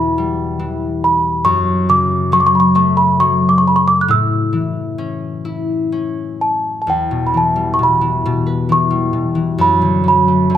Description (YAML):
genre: celtic folk, Celtic slow air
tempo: 62-70 BPM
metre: 3/4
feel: rubato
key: E dorian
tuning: A4 = 436 Hz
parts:
  - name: small celesta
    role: melody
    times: 0.0-10.6 s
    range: G5 to F#6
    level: -14 LUFS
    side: right 1 dB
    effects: none
  - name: concert harp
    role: accompaniment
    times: 0.0-10.6 s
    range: E2 to B4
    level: -16 LUFS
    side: left 2 dB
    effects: none
room: moderate recital hall reverb, RT60 1.4 s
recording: none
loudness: -13 LUFS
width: side -10 dB against mid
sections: 0.0-6.9 A section; 6.9-10.6 B section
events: none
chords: 0.0 Em; 1.5 F#m; 4.1 A; 6.9 Em; 9.6 D/F#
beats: 0.60 | 1.45 2.31 3.19 | 4.08 4.97 5.92 | 6.87 7.79 8.68 | 9.59 10.51